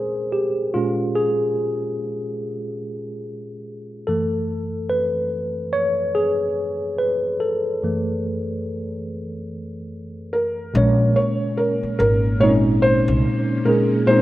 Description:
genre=lo-fi hip hop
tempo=72 BPM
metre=4/4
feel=swing 60% on 16ths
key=unclear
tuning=A4 = 444 Hz
part: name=mellow tine electric piano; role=accompaniment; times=0.0-14.2 s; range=Gb2 to Db5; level=-21 LUFS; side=equal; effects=medium stereo tremolo, cassette tape, low-pass filter
part: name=felt-muted upright piano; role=melody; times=10.3-14.2 s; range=Bb4 to Db5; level=-21 LUFS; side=equal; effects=low-pass filter
part: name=string machine, cellos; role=sustained chords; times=10.7-14.2 s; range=Bb2 to Db4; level=-30 LUFS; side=left 1 dB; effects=ensemble chorus, low-pass filter
part: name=upright bass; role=bass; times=10.8-13.2 s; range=Ab1 to C2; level=-21 LUFS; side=equal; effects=none
room=light reverb, small room ambience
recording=rough home demo mix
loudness=-19 LUFS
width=side -15 dB against mid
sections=0.0-10.7 A section; 10.7-14.2 B section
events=tine electric piano solo 0.0-10.7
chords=0.0 Bbm7; 4.1 Gbm9; 10.7 Bbm9

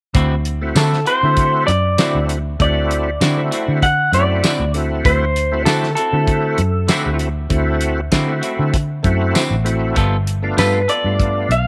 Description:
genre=straight-eighth soul blues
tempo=98 BPM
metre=4/4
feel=swing 54% on 16ths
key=D mixolydian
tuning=A4 = 440 Hz
part: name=semi-hollow electric guitar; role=stabs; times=0.1-11.1 s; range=D3 to A4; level=-26 LUFS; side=equal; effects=none
part: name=vintage muted fingered electric bass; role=bass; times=0.1-11.7 s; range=G1 to D3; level=-21 LUFS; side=equal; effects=none
part: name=damped 70s drum kit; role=drums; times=0.1-11.7 s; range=hi-hat, kick drum, snare drum, tambourine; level=-21 LUFS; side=equal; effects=none
part: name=overdriven tonewheel organ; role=accompaniment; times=0.6-11.5 s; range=A3 to F#4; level=-25 LUFS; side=equal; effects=chorus vibrato, slow rotary speaker
part: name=electric guitar through a small old amp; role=melody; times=0.8-11.7 s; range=A4 to F#5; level=-21 LUFS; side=equal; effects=none
room=light reverb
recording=none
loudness=-17 LUFS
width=mono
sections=0.1-11.7 A section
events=none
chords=0.1 D9; 10.0 G9

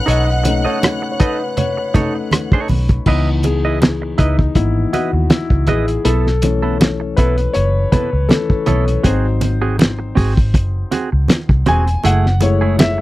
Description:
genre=lush 1970s-style soul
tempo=80 BPM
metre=4/4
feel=swing 54% on 16ths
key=C# minor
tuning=A4 = 440 Hz
part: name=warm studio string section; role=second line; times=0.0-2.7 s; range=F#5 to F#6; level=-25 LUFS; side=right 2 dB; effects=none
part: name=dark grand piano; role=accompaniment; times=0.0-13.0 s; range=E3 to G#5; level=-20 LUFS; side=left 4 dB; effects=none
part: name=semi-hollow electric guitar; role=riff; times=0.1-13.0 s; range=A3 to D#5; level=-21 LUFS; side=right 5 dB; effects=none
part: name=vintage muted fingered electric bass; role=bass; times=0.1-13.0 s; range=E1 to D#2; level=-16 LUFS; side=equal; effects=none
part: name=cloth-damped thuddy drum kit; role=drums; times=0.1-13.0 s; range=crash cymbal, hi-hat, kick drum, rim click, snare drum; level=-15 LUFS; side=equal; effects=none
part: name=congas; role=percussion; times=0.1-13.0 s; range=none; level=-22 LUFS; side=right 3 dB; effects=none
room=little or no reverb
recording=dry, close 1970s-style studio recording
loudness=-13 LUFS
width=side -17 dB against mid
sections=0.0-3.1 A section; 3.1-13.0 B section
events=grand piano solo 0.0-3.1, 3.1-13.0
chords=0.0 B9; 3.1 C#m9; 6.1 B7sus4; 9.0 G#7; 12.0 F#m9

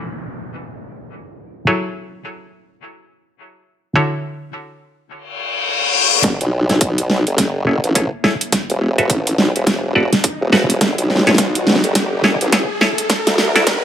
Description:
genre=glitch hop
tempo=105 BPM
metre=4/4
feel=swing 60% on 16ths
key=F# minor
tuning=A4 = 440 Hz
part: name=muted clav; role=stabs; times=0.0-13.7 s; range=D3 to F#5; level=-19 LUFS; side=equal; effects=sidechain pumping, low-pass filter, dub echo
part: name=downlifter, reverse cymbal and riser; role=sound effects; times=0.0-13.8 s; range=none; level=-21 LUFS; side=left 3 dB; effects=none
part: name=formant-sweep wobble bass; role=bass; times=6.2-13.8 s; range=E1 to D2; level=-17 LUFS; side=equal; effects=chorus, tube saturation, high-pass filter
part: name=dubstep drum kit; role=drums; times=6.2-13.8 s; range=hi-hat, snare drum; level=-17 LUFS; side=right 1 dB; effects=low-pass filter on hats, low-pass filter on snare, low-pass filter on perc
part: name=electronic kick drum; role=drums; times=6.2-13.8 s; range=none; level=-21 LUFS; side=equal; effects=high-pass filter on kick
room=light reverb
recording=high-pass filter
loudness=-14 LUFS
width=side -10 dB against mid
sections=0.0-6.2 A section; 6.2-13.8 B section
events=reverse cymbal 5.3-6.2; build-up 6.2-13.8; drum fill 6.2-13.8; riser 6.2-13.8; filter sweep on clav 6.2-13.8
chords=0.0 E7sus4; 1.7 F#m7; 4.0 Dmaj9; 6.2 F#m7; 8.5 Esus4; 10.8 F#m7; 13.1 Dadd9

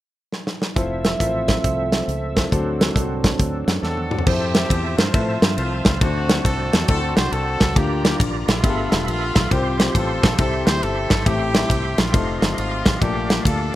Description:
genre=uptempo gospel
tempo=137 BPM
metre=4/4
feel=swing 64% on 8ths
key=F major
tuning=A4 = 440 Hz
part: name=modern studio drum kit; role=drums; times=0.3-13.6 s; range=crash cymbal, hi-hat, kick drum, ride cymbal, snare drum, toms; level=-19 LUFS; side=equal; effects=none
part: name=clear grand piano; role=accompaniment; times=0.8-13.7 s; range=G2 to E5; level=-27 LUFS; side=left 5 dB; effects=none
part: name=bright tonewheel organ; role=sustained chords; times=0.8-13.8 s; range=F3 to C6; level=-28 LUFS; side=right 3 dB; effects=fast rotary speaker, overdrive, chorus vibrato
part: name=mellow French horn section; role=sustained chords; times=0.8-4.3 s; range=F3 to E5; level=-28 LUFS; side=right 2 dB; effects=none
part: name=fingered electric bass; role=bass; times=0.8-13.7 s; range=E1 to A2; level=-25 LUFS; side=equal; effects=none
part: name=clear horn section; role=melody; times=3.8-13.8 s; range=A3 to C5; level=-26 LUFS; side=equal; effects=none
room=light reverb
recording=rough home demo mix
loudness=-17 LUFS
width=side -14 dB against mid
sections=0.8-4.3 A section; 4.3-13.8 B section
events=drum fill 0.3-0.8, 3.8-4.3; grand piano fill 3.6-4.3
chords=0.0 N.C.; 0.8 Fmaj7; 2.5 D7; 4.3 Fmaj7; 6.0 D7; 7.8 Gm7/D; 8.6 G13; 9.5 Csus4; 10.4 C; 11.3 Am7; 12.1 F7; 13.0 Bbmaj7

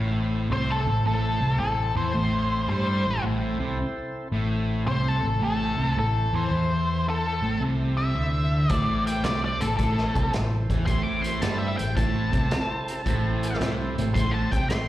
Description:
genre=blues rock power trio and southern rock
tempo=110 BPM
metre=4/4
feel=swing 67% on 8ths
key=A minor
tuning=A4 = 440 Hz
part: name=percussive tonewheel organ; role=sustained chords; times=0.0-14.9 s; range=C4 to C#5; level=-36 LUFS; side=right 1 dB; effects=slow rotary speaker, overdrive
part: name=fuzz guitar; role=riff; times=0.0-14.9 s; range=A2 to G3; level=-27 LUFS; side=equal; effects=distortion, slapback echo
part: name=vintage muted fingered electric bass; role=bass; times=0.0-14.9 s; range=A1 to G2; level=-28 LUFS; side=equal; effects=none
part: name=octave-fuzz lead guitar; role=melody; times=0.5-14.9 s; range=A4 to D6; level=-28 LUFS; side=left 1 dB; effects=wah, distortion, slapback echo
part: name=vintage drum kit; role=drums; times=8.7-14.9 s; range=hi-hat, kick drum, snare drum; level=-28 LUFS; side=equal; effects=none
room=light reverb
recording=live gig heard through the venue's PA, recital hall reverb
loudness=-22 LUFS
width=side -14 dB against mid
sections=0.0-14.9 A section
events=none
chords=0.0 Am

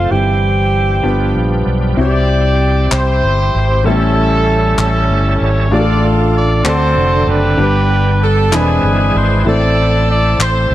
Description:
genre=slow gospel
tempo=64 BPM (dotted quarters)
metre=6/8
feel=straight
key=C major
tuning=A4 = 440 Hz
part: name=warm tenor saxophone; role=melody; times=0.0-1.7 s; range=F4 to G4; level=-18 LUFS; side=right 2 dB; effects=none
part: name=clear concert grand piano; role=accompaniment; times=0.0-10.7 s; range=G2 to B5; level=-18 LUFS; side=left 2 dB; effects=none
part: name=bright tonewheel organ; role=sustained chords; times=0.0-10.7 s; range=D3 to A4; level=-22 LUFS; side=right 4 dB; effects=slow rotary speaker, overdrive, chorus vibrato
part: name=fingered electric bass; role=bass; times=0.0-10.7 s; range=E1 to D2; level=-14 LUFS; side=equal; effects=none
part: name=clear horn section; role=melody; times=2.0-10.7 s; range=C#4 to D5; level=-16 LUFS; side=equal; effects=slapback echo
part: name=group handclap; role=percussion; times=2.9-10.7 s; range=none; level=-19 LUFS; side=left 2 dB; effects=none
room=light reverb, studio reverb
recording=dark, warm production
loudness=-11 LUFS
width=side -14 dB against mid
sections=0.0-2.0 A section; 2.0-10.7 B section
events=none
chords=0.1 C/G; 1.0 G7; 2.0 C; 3.8 A7; 5.7 Dm/A; 6.7 D7; 7.6 G; 8.5 E7b13; 9.5 Am

